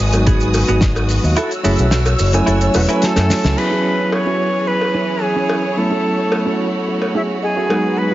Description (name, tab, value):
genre	nu-disco, nu disco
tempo	109 BPM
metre	4/4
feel	straight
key	unclear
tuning	A4 = 440 Hz
part	clear studio string section	sustained chords	0.0-8.1 s	E3 to E6	-23 LUFS	equal	sidechain pumping
part	fingered electric bass with an envelope filter	bass	0.0-3.5 s	E1 to F#2	-16 LUFS	equal	tube saturation
part	tine electric piano	accompaniment	0.1-8.1 s	F#3 to G#5	-20 LUFS	right 1 dB	medium tremolo
part	damped 70s drum kit	drums	0.1-3.7 s	crash cymbal, hi-hat, shaker, snare drum	-23 LUFS	left 1 dB	none
part	cowbell	percussion	0.1-7.8 s	none	-25 LUFS	left 1 dB	none
part	direct-recorded clean electric guitar	riff	0.3-8.1 s	B3 to G#5	-24 LUFS	right 3 dB	wide subtle chorus, low-pass filter
part	electronic kick drum	drums	0.3-0.9 s	none	-16 LUFS	equal	overdrive
part	breathy bright jazz flute	melody	2.7-8.1 s	E4 to C#5	-20 LUFS	equal	tape echo
room	light reverb, studio reverb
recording	heavily compressed radio sound, nothing above 7.6 kHz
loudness	-14 LUFS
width	side -15 dB against mid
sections	0.0-3.6 A section; 3.6-8.1 B section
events	kick drops out 1.4-3.6; drum fill 3.0-3.6; band accent 3.4; clean electric guitar fill 7.2-8.0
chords	0.0 G#m7; 1.4 F#m7; 3.6 E6; 5.8 A6